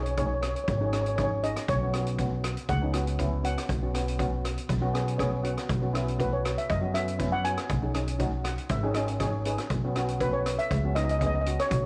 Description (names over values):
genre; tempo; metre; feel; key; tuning
calypso; 120 BPM; 4/4; straight; unclear; A4 = 443 Hz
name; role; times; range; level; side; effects
steel pan; melody; 0.0-11.9 s; B4 to G#5; -32 LUFS; equal; none
steel pan; accompaniment; 0.0-11.9 s; B3 to F#5; -35 LUFS; equal; none
upright bass; bass; 0.0-11.9 s; G#1 to F#2; -32 LUFS; equal; none
street-band drum kit; drums; 0.1-11.8 s; hi-hat, kick drum, rim click; -36 LUFS; equal; none
room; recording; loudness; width
moderate echo chamber reverb, RT60 1.6 s, studio ambience; none; -28 LUFS; mono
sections
0.0-11.9 A section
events
steel pan fill 4.9-5.7, 8.2-9.7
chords
0.0 C#sus2/B; 1.7 F#sus4/B; 3.7 Bsus2; 4.7 F#sus4/B; 5.7 Bsus2; 7.7 C#sus2/B; 9.7 F#sus4/B